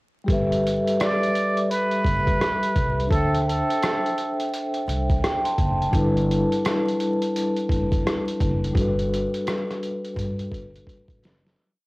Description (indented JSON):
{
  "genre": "lo-fi hip hop",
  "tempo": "85 BPM",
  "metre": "4/4",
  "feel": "swing 61% on 16ths",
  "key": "G major",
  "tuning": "A4 = 440 Hz",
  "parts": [
    { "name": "vibraphone with soft mallets", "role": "accompaniment", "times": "0.2-11.6 s", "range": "G3 to C6", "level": "-24 LUFS", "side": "equal", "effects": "cassette tape, low-pass filter" },
    { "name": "upright bass", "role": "bass", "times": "0.3-11.5 s", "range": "F#1 to G2", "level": "-26 LUFS", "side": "equal", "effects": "transformer saturation" },
    { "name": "trip hop sampler-style drum kit", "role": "drums", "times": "0.3-11.6 s", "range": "hi-hat, kick drum, rim click, snare drum", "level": "-26 LUFS", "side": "equal", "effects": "none" },
    { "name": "trumpet with plunger mute", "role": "melody", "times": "1.0-4.5 s", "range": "A4 to D5", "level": "-25 LUFS", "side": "right 1 dB", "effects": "low-pass filter, cassette tape, plate reverb" }
  ],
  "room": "moderate booth ambience, RT60 0.2 s",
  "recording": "home recording on cassette, vinyl crackle",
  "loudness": "-20 LUFS",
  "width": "side -21 dB against mid",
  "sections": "0.3-11.6 A section",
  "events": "fade-out 8.8-11.6; drum fill 10.2-11.6",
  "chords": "0.3 G69; 3.1 D7sus4; 5.9 G69; 8.8 Gmaj9",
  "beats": "| 0.28 0.99 1.69 2.40 | 3.10 3.81 4.52 5.22 | 5.93 6.63 7.34 8.05 | 8.75 9.46 10.16 10.87"
}